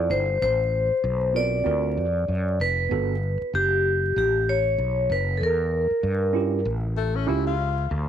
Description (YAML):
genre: hip hop, jazz-hop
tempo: 96 BPM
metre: 4/4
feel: swing 60% on 16ths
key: unclear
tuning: A4 = 438 Hz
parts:
  - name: vibraphone with medium hard mallets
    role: melody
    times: 0.0-6.6 s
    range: G4 to D5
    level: -23 LUFS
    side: left 1 dB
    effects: none
  - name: tine electric piano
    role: accompaniment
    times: 0.0-7.5 s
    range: B3 to D5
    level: -29 LUFS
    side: right 9 dB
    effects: overdrive, fast stereo tremolo
  - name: fretless electric bass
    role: bass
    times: 0.0-8.1 s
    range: E#1 to G2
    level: -26 LUFS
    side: equal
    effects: none
  - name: breathy tenor saxophone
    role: second line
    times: 7.0-7.9 s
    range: A3 to F4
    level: -28 LUFS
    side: left 10 dB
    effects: tape echo
room: light reverb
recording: 1960s-style stereo with parts hard left and right, vinyl crackle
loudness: -21 LUFS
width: side -9 dB against mid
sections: 0.0-8.1 A section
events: none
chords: 0.4 Amadd9; 1.7 D7alt; 2.9 Gmaj7; 5.4 Edim; 6.7 A7b13